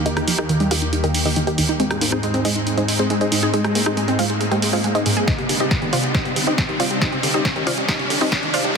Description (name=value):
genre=uplifting trance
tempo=138 BPM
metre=4/4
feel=straight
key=unclear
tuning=A4 = 442 Hz
part: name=wide unison pluck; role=melody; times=0.0-8.7 s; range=C4 to G5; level=-23 LUFS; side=equal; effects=sidechain pumping, tape echo
part: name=lush unison pad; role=sustained chords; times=0.0-8.8 s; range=Eb2 to G4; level=-24 LUFS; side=equal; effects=chorus, sidechain pumping
part: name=riser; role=sound effects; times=1.0-8.8 s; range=none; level=-28 LUFS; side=left 1 dB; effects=none
part: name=analog pluck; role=arpeggios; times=0.1-8.6 s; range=Eb2 to Ab4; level=-25 LUFS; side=right 2 dB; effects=chorus, sidechain pumping, tape echo
part: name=punchy analog drum machine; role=drums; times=0.1-8.7 s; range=hi-hat, rim click, snare drum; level=-23 LUFS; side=right 1 dB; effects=high-pass filter on hats, high-pass filter on snare, high-pass filter on room
part: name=electronic kick drum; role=drums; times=5.3-8.4 s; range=none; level=-24 LUFS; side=equal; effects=none
room=moderate huge ambient reverb, RT60 8.2 s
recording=dense, heavily limited modern master, high-pass filter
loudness=-17 LUFS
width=side -5 dB against mid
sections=0.0-8.8 A section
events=build-up 0.0-8.8; filter sweep on synth pluck 0.0-8.8; filter sweep on synth arpeggio sound 0.0-8.8; riser 1.0-8.8; drum fill 5.3-8.8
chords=0.0 Eb; 1.8 Ab; 5.3 Cmadd9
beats=| 0.06 0.49 0.93 1.36 | 1.80 2.23 2.67 3.10 | 3.54 3.97 4.41 4.84 | 5.28 5.71 6.15 6.58 | 7.01 7.45 7.88 8.32 | 8.75